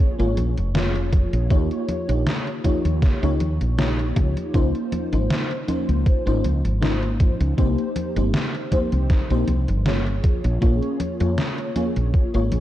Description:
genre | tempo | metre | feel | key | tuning
vaporwave | 79 BPM | 4/4 | swing 54% on 16ths | Bb dorian | A4 = 440 Hz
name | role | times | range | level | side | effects
FM electric piano with soft pad layer | accompaniment | 0.0-12.5 s | Bb3 to Db5 | -25 LUFS | left 1 dB | tremolo, ensemble chorus, analog delay
woody fretless electric bass | bass | 0.2-12.6 s | F1 to F2 | -22 LUFS | equal | none
gated 80s digital drum machine | drums | 0.2-12.6 s | congas, hi-hat, snare drum | -27 LUFS | equal | gated reverb, gated reverb snare, overdrive
electronic kick drum | drums | 1.1-12.3 s | none | -19 LUFS | equal | overdrive
room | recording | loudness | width
light reverb | dark, warm production, cassette tape | -19 LUFS | side -13 dB against mid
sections
0.0-12.6 A section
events
none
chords
0.0 Bbm7; 1.5 Eb9; 4.5 Dbmaj13; 7.6 Cm7; 10.2 Bbm7

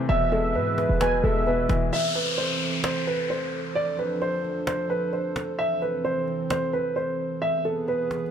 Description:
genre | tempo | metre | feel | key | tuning
hip hop, trap | 131 BPM | 4/4 | half-time | A harmonic minor | A4 = 440 Hz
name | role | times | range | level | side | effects
dark concert grand piano | melody | 0.0-8.3 s | A4 to E5 | -26 LUFS | right 1 dB | low-pass filter
felt-muted upright piano | accompaniment | 0.0-1.9 s | B2 to C5 | -28 LUFS | left 6 dB | low-pass filter
dark analog pad | sustained chords | 0.0-8.3 s | E3 to C5 | -31 LUFS | right 3 dB | chorus
warm velvety synth lead | second line | 0.1-1.9 s | E5 to G#5 | -29 LUFS | right 2 dB | chorus, tape echo
short 808-style bass | bass | 0.1-1.9 s | E1 to G#2 | -26 LUFS | equal | none
cajon | drums | 0.1-8.3 s | none | -33 LUFS | equal | none
downlifter | sound effects | 1.9-5.6 s | none | -30 LUFS | left 3 dB | none
room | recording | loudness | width
light reverb, small room reverb | none | -23 LUFS | side -8 dB against mid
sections
0.0-1.9 A section; 1.9-8.3 B section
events
break 1.9-8.3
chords
0.1 E; 1.9 Am; 3.8 Dm7; 5.6 Am; 7.4 E

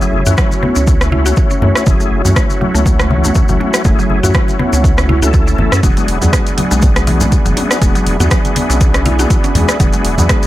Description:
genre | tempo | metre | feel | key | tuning
afro house | 121 BPM | 4/4 | swing 55% on 16ths | F# minor | A4 = 441 Hz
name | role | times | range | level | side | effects
warm analog pad | sustained chords | 0.0-10.5 s | F#4 to B5 | -23 LUFS | right 1 dB | lush chorus, sidechain pumping
mallet-like synth pluck | arpeggios | 0.0-10.4 s | E3 to F#4 | -20 LUFS | equal | chorus, sidechain pumping, tape echo
bright tonewheel organ | stabs | 0.0-10.5 s | A3 to A4 | -19 LUFS | left 3 dB | chorus vibrato, fast rotary speaker, sidechain pumping, tape echo
maracas | percussion | 0.0-10.5 s | none | -24 LUFS | left 3 dB | none
round analog bass | bass | 0.1-10.3 s | E1 to F#2 | -15 LUFS | equal | tube saturation, sidechain pumping
congas | percussion | 0.1-10.5 s | none | -21 LUFS | equal | none
deep house drum kit | drums | 0.4-10.5 s | hi-hat, rim click, toms | -20 LUFS | right 1 dB | overdrive, studio reverb
electronic kick drum | drums | 0.4-10.4 s | none | -13 LUFS | equal | overdrive, studio reverb
room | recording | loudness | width
digital ambience | none | -10 LUFS | side -15 dB against mid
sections
0.0-10.5 A section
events
none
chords
0.0 F#m7; 5.8 E7

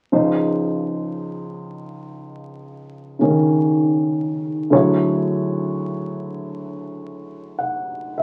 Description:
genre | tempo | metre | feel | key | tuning
jazz | 52 BPM | 4/4 | swing 68% on 8ths | Db major | A4 = 438 Hz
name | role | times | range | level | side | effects
warm grand piano | accompaniment | 0.1-8.2 s | Db2 to F#5 | -21 LUFS | equal | none
room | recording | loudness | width
wet studio reverb, RT60 0.6 s | very old 78 rpm record, vinyl crackle | -20 LUFS | mono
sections
0.1-8.2 A section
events
none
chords
0.1 Dbmaj9; 4.7 Dmaj9#11

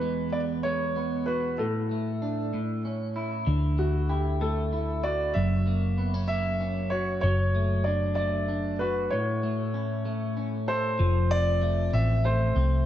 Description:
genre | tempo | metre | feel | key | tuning
six-eight pop ballad | 64 BPM (dotted quarters) | 6/8 | straight | D major | A4 = 441 Hz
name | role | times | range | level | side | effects
warm concert grand piano | melody | 0.0-12.8 s | F#4 to E5 | -30 LUFS | equal | none
electric guitar at the edge of break-up | accompaniment | 0.0-12.9 s | E2 to A4 | -30 LUFS | equal | wide subtle chorus
hollow-body short-scale fingered electric bass | bass | 3.5-12.9 s | F1 to D2 | -26 LUFS | equal | none
room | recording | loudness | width
moderate lush hall reverb, RT60 1.9 s, small room ambience | dreamy mix soaked in reverb, nothing above 7.9 kHz | -24 LUFS | side -11 dB against mid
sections
0.0-11.0 A section; 11.0-12.9 B section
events
break 9.1-11.0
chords
0.0 Eadd9; 1.6 D5/A; 2.5 A; 3.5 Dadd9; 5.4 F#7; 7.2 D/F#; 9.1 A; 11.0 F

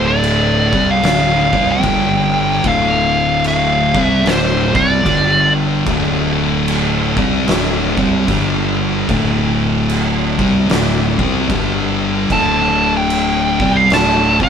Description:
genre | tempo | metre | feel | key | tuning
stoner and doom metal | 74 BPM | 4/4 | swing 62% on 8ths | D minor | A4 = 439 Hz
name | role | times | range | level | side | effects
fuzz lead guitar | melody | 0.0-5.5, 12.3-14.5 s | C5 to A5 | -15 LUFS | right 1 dB | wah, distortion
thick fuzz guitar | riff | 0.0-14.5 s | D2 to C4 | -17 LUFS | left 7 dB | distortion
thick fuzz guitar | riff | 0.0-14.5 s | D2 to C4 | -19 LUFS | right 7 dB | distortion
growling fingered electric bass | bass | 0.0-14.5 s | D1 to C2 | -24 LUFS | right 1 dB | overdrive
oversized low-tuned drum kit | drums | 0.2-14.5 s | crash cymbal, kick drum, snare drum | -20 LUFS | equal | none
room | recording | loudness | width
light reverb | band playing live in one room | -12 LUFS | side -7 dB against mid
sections
0.0-14.5 A section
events
none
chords
0.0 Dm; 1.8 G5; 2.6 Dm; 5.1 G5; 5.9 D5; 8.3 G5; 9.1 D5; 11.5 G5; 12.3 D5

